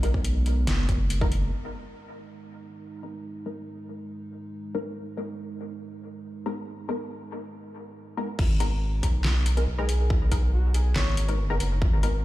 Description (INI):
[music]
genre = deep dubstep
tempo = 140 BPM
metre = 4/4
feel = half-time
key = G# minor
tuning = A4 = 441 Hz
[part]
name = dark analog pad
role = sustained chords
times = 0.0-8.4 s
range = G#3 to D#4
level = -38 LUFS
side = right 2 dB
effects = chorus
[part]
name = filtered dub chord stab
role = stabs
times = 0.0-12.1 s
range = G#3 to A#4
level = -35 LUFS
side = left 2 dB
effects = wide subtle chorus, dub echo
[part]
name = saturated sub bass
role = bass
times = 0.0-1.5, 8.4-12.2 s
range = F#1 to B1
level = -24 LUFS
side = equal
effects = none
[part]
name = dubstep drum kit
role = drums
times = 0.0-1.4, 8.4-12.1 s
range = crash cymbal, handclaps, hi-hat, snare drum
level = -33 LUFS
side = equal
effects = overdrive, low-pass filter on hats, low-pass filter on snare, low-pass filter on cymbals, low-pass filter on room
[part]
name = electronic kick drum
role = drums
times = 0.1-1.3, 8.4-11.9 s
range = none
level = -25 LUFS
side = equal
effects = overdrive
[part]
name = breathy flute-like synth lead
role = melody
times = 9.8-11.3 s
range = F#4 to C#5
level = -37 LUFS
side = equal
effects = lush chorus, dub echo
[sound]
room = little or no reverb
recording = played on a big sound system in a bare room, large studio reverb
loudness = -24 LUFS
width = side -16 dB against mid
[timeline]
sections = 0.0-1.5 A section; 1.5-8.4 B section; 8.4-12.2 C section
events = filter sweep on synth stab 1.5-8.4; drop 8.4-12.2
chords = 0.0 G#madd9